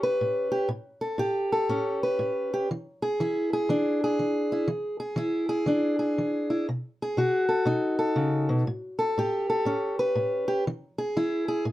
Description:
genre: blues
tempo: 121 BPM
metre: 4/4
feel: swing 63% on 8ths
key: E mixolydian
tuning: A4 = 443 Hz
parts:
  - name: fingerpicked steel-string acoustic guitar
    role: solo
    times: 0.0-11.7 s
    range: A2 to B4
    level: -24 LUFS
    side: equal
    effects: none
room: light reverb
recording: none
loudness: -24 LUFS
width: side -15 dB against mid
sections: 0.0-11.7 A section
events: none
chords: 0.0 A7; 2.7 E7; 6.7 B7; 8.7 A7; 10.7 E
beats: 0.21 | 0.70 1.20 1.70 2.20 | 2.69 3.19 3.69 4.19 | 4.69 5.18 5.68 6.18 | 6.68 7.17 7.67 8.17 | 8.67 9.16 9.66 10.16 | 10.65 11.15 11.65

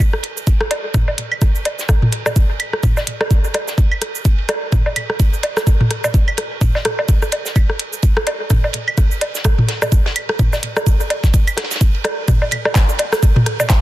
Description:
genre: techno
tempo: 127 BPM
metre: 4/4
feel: swing 57% on 16ths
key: none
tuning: none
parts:
  - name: electronic kick drum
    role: drums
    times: 0.0-13.8 s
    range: none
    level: -14 LUFS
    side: equal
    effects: overdrive
  - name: minimal click drum kit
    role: drums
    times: 0.0-13.8 s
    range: cabasa, handclaps, hi-hat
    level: -24 LUFS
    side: right 1 dB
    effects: overdrive
  - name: warm soul drum kit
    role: drums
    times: 0.0-13.8 s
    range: ride cymbal, snare drum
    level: -29 LUFS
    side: right 3 dB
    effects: high-pass filter on cymbals, low-pass filter on cymbals, soft clipping on snare, high-pass filter on snare, low-pass filter on snare, high-pass filter on room, low-pass filter on room
  - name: garage drum kit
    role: percussion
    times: 0.0-13.7 s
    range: claves, rim click, toms, woodblock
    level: -19 LUFS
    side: equal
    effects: soft clipping on snare, tape echo
room: digital ambience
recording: dense, heavily limited modern master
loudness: -14 LUFS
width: side -15 dB against mid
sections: 0.0-12.3 A section; 12.3-13.8 B section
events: drop 12.3-13.8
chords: none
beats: 0.00 0.47 | 0.94 1.42 1.89 2.36 | 2.83 3.31 3.78 4.25 | 4.72 5.20 5.67 6.14 | 6.61 7.09 7.56 8.03 | 8.50 8.98 9.45 9.92 | 10.39 10.87 11.34 11.81 | 12.28 12.76 13.23 13.70

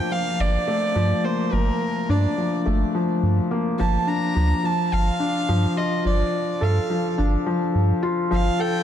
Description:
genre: piano and strings electronica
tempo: 106 BPM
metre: 4/4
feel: straight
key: unclear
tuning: A4 = 439 Hz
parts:
  - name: dark violin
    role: melody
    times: 0.0-8.8 s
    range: Bb4 to Bb5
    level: -26 LUFS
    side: right 2 dB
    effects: digital delay
  - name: felt-muted upright piano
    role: riff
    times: 0.0-8.8 s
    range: F3 to A4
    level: -23 LUFS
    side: left 2 dB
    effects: digital delay
  - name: warm sub bass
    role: bass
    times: 0.4-8.5 s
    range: G1 to G2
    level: -21 LUFS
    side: right 1 dB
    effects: none
room: moderate lush hall reverb, RT60 2.8 s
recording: dark, warm production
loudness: -20 LUFS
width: side -10 dB against mid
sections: 0.0-8.8 A section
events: none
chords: 0.0 Gm9; 4.6 Dm/G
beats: | 0.12 0.69 1.25 1.82 | 2.38 2.95 3.52 4.08 | 4.65 5.21 5.78 6.34 | 6.91 7.48 8.04 8.61

